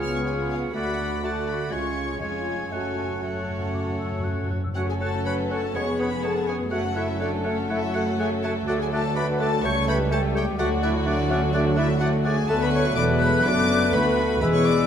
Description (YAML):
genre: quick classical-period movement for symphony orchestra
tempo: 124 BPM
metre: 4/4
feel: rubato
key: F# minor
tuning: A4 = 440 Hz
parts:
  - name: warm chamber violin section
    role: melody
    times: 0.0-14.9 s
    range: C#5 to E#6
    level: -32 LUFS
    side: left 4 dB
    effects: none
  - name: clear oboe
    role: second line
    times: 0.0-14.9 s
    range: B4 to D5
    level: -35 LUFS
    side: right 2 dB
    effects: none
  - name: concert flute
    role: second line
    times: 0.0-14.9 s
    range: D6 to G#6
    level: -32 LUFS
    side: left 2 dB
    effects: none
  - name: mellow clarinet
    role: second line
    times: 0.0-14.9 s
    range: C#4 to D5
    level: -31 LUFS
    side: left 1 dB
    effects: none
  - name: warm chamber violin section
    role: second line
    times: 0.0-14.9 s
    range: G3 to F#5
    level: -33 LUFS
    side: left 3 dB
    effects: none
  - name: mellow bassoon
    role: accompaniment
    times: 0.0-14.9 s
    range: G#3 to C#4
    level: -33 LUFS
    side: right 2 dB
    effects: none
  - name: warm chamber viola section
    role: accompaniment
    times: 0.0-14.9 s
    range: D3 to F#4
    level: -29 LUFS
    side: right 1 dB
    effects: none
  - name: mellow French horn section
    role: sustained chords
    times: 0.0-14.9 s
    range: G#3 to A4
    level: -29 LUFS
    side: left 5 dB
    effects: none
  - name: dark chamber cello section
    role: bass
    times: 0.0-14.9 s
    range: C#2 to F#2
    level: -31 LUFS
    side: right 1 dB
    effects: none
  - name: dark chamber double bass section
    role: bass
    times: 0.0-14.9 s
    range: E1 to D2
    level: -30 LUFS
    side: right 4 dB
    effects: none
  - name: timpani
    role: percussion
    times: 0.0-4.7, 14.4-14.9 s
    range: E2 to C#3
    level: -32 LUFS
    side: left 1 dB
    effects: none
room: wet recital hall reverb, RT60 1.4 s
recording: minimal, uncompressed stereo recording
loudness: -21 LUFS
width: side -8 dB against mid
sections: 0.0-4.8 A section; 4.8-14.9 B section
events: timpani fill 2.7-4.8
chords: 0.0 C#7; 0.7 D; 1.7 C#; 2.7 F#m; 5.8 C#7/E#; 6.7 F#m; 8.7 D; 9.6 A7/C#; 10.6 D; 12.5 Bm7